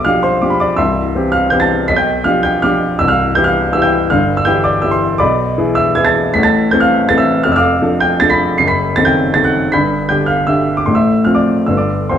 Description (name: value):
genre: classical, piano waltz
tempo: 132-171 BPM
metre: 3/4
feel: rubato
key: C major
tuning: A4 = 443 Hz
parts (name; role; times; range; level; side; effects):
- clear upright piano; solo; 0.0-12.2 s; C1 to C7; -11 LUFS; equal; none
room: wet large studio reverb, RT60 1.0 s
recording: heard from further back in the room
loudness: -11 LUFS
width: side -9 dB against mid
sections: 0.0-12.2 A section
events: none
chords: 0.0 G7/B; 0.8 C; 1.9 G7/B; 3.0 C; 5.2 E7/B; 6.3 Am; 7.5 Dm/F; 8.6 F#dim7; 9.7 G; 10.9 F/A; 11.7 G7